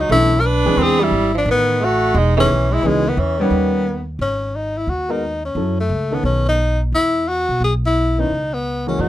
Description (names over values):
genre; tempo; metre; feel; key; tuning
jazz, small-group swing and bop; 175 BPM; 4/4; swing 64% on 8ths; G# minor from 4.2 s; A4 = 437 Hz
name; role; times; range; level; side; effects
breathy tenor saxophone; melody; 0.0-9.1 s; G#3 to B4; -18 LUFS; left 2 dB; none
warm tenor saxophone; second line; 0.0-4.1, 9.0-9.1 s; B2 to D4; -22 LUFS; right 6 dB; none
upright bass; bass; 0.0-9.1 s; E1 to B2; -20 LUFS; equal; none
warm concert grand piano; accompaniment; 0.1-9.1 s; D#3 to C#5; -20 LUFS; equal; none
room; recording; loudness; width
little or no reverb; close, detailed microphones; -15 LUFS; side -13 dB against mid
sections
0.0-4.2 A section; 4.2-9.1 B section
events
none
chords
0.1 Bm11; 0.8 E7alt; 1.5 Amaj9#11; 2.8 C#m9; 3.5 D#7b13; 4.2 G#5; 5.6 F#m7; 6.2 B9; 6.9 Esus2; 8.3 C#m7